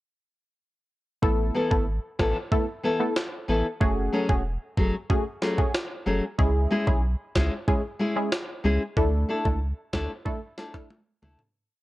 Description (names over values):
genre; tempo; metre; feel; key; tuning
dancehall; 93 BPM; 4/4; straight; unclear; A4 = 440 Hz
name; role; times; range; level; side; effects
punchy chord stab; accompaniment; 1.2-10.9 s; G#3 to A4; -28 LUFS; equal; chorus
warm sub bass; bass; 1.2-11.4 s; E1 to D2; -26 LUFS; equal; none
jungle sampler-style drum kit; drums; 1.2-11.5 s; kick drum, rim click, snare drum, toms; -26 LUFS; equal; none
nylon-string guitar; arpeggios; 1.5-11.4 s; E3 to A4; -26 LUFS; left 2 dB; none
room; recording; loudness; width
little or no reverb; worn, warbling old tape, cassette tape, warbly pitch drift; -23 LUFS; side -17 dB against mid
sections
1.2-11.5 verse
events
fade-out 9.0-11.5; drum fill 10.9-11.5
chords
1.2 Asus2; 3.8 F#madd9; 6.4 C#m; 9.0 Dsus2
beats
| 1.23 1.87 2.52 3.16 | 3.81 4.45 5.10 5.74 | 6.39 7.03 7.68 8.32 | 8.97 9.61 10.26 10.90